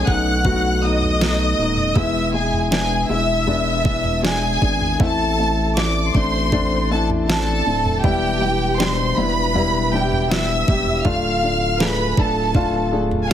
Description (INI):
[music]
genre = pop ballad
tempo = 80 BPM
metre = 4/4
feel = straight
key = unclear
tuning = A4 = 439 Hz
[part]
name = warm studio violin section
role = melody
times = 0.0-13.3 s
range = G4 to F#6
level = -21 LUFS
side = equal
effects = none
[part]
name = dark baby grand piano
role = accompaniment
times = 0.0-13.3 s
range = A2 to A4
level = -22 LUFS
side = left 3 dB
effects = none
[part]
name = saturated sub bass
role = bass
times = 0.0-13.3 s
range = D1 to B1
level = -24 LUFS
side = right 1 dB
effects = none
[part]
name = smooth R&B drum kit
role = drums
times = 0.1-13.3 s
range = kick drum, snare drum, toms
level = -22 LUFS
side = right 1 dB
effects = none
[sound]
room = light reverb, small room ambience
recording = heavily compressed radio sound, multiband compression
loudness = -16 LUFS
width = side -10 dB against mid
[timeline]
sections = 0.0-13.3 A section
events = none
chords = 0.0 B7; 2.0 E; 5.0 Am; 8.0 Em; 11.1 Dm